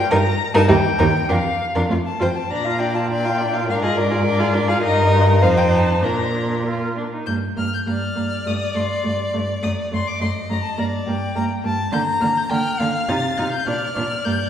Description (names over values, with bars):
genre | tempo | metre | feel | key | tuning
quick classical-period movement for string quartet | 102 BPM | 2/4 | rubato | Bb major, G minor from 7.3 s | A4 = 439 Hz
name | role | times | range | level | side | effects
rich violin | melody | 0.0-14.5 s | D5 to A6 | -25 LUFS | left 4 dB | none
rich violin | second line | 0.1-14.5 s | Eb4 to Bb5 | -23 LUFS | left 2 dB | none
rich viola | accompaniment | 0.1-14.3 s | G3 to F4 | -24 LUFS | right 2 dB | none
warm cello | bass | 0.1-14.3 s | Eb2 to D3 | -22 LUFS | right 1 dB | none
room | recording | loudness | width
wet scoring stage reverb, RT60 1.7 s | heard from further back in the room | -17 LUFS | side -9 dB against mid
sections
0.0-7.3 A section; 7.3-14.5 B section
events
none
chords
0.1 Eb; 1.3 Bb/F (rootless); 1.9 F; 2.5 Bb; 3.7 Bb7/Ab; 4.8 Eb/G; 5.4 F7; 6.0 Bb; 7.3 Gm; 8.5 Cm69/G; 9.6 D7b9/F#; 10.8 Gm; 11.9 Bb/D; 13.1 F7/C; 13.7 Bb